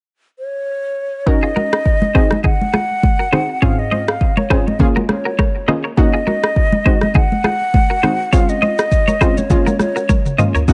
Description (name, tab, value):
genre	afrobeats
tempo	102 BPM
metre	4/4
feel	swing 55% on 16ths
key	Eb dorian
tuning	A4 = 440 Hz
part	breathy mellow silver concert flute	melody	0.4-10.7 s	Db5 to Gb5	-23 LUFS	equal	tape echo
part	analog pluck	accompaniment	1.3-10.7 s	Ab2 to Bb4	-22 LUFS	equal	chorus, tape echo
part	afro-pop drum kit	drums	1.3-10.7 s	kick drum, rim click, shaker, toms	-18 LUFS	equal	none
part	clean electric guitar	riff	1.4-10.6 s	Eb4 to Eb5	-25 LUFS	equal	tape echo
part	congas	percussion	1.6-10.5 s	none	-23 LUFS	equal	tape echo
room	little or no reverb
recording	echo-heavy mix, nothing above 10.6 kHz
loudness	-16 LUFS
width	mono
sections	0.0-1.3 A section; 1.3-10.7 B section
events	drum fill 10.1-10.7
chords	0.0 N.C.; 1.3 Ebm7; 2.1 Ab7; 3.6 Dbmaj7/Ab; 4.8 Bbm7; 6.0 Ebm7; 6.9 Ab7; 8.3 Dbmaj7/Ab; 9.5 Bbm7